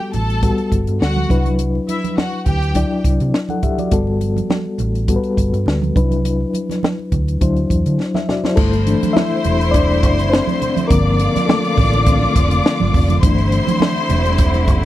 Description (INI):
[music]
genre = lush 1970s-style soul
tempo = 103 BPM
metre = 4/4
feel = swing 54% on 16ths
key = unclear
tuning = A4 = 441 Hz
[part]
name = bright studio string section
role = second line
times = 0.0-3.0, 8.6-14.8 s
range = E4 to D6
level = -22 LUFS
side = left 2 dB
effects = none
[part]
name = mellow reed electric piano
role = accompaniment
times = 0.0-14.8 s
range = D3 to F#5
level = -20 LUFS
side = left 3 dB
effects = fast tremolo
[part]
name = congas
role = percussion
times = 0.0-14.7 s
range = none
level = -24 LUFS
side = right 9 dB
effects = none
[part]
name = hollow-body short-scale fingered electric bass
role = bass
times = 0.1-14.8 s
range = E1 to D3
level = -18 LUFS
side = right 1 dB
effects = none
[part]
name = compact cocktail drum kit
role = drums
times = 0.1-14.8 s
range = crash cymbal, hi-hat, kick drum, snare drum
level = -18 LUFS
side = equal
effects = none
[part]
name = warm studio string section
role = sustained chords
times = 8.6-14.8 s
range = D3 to F4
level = -24 LUFS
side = right 2 dB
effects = none
[sound]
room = little or no reverb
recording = dry, close 1970s-style studio recording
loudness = -14 LUFS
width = side -14 dB against mid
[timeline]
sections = 0.0-8.6 A section; 8.6-14.8 B section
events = drum fill 8.0-8.6; reed electric piano solo 8.6-14.8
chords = 0.0 Gmaj9; 1.3 Cmaj9#11; 3.9 Gmaj9; 6.0 Cmaj9#11; 7.4 D9; 8.6 C69; 10.9 Bbmaj7/G; 13.2 C69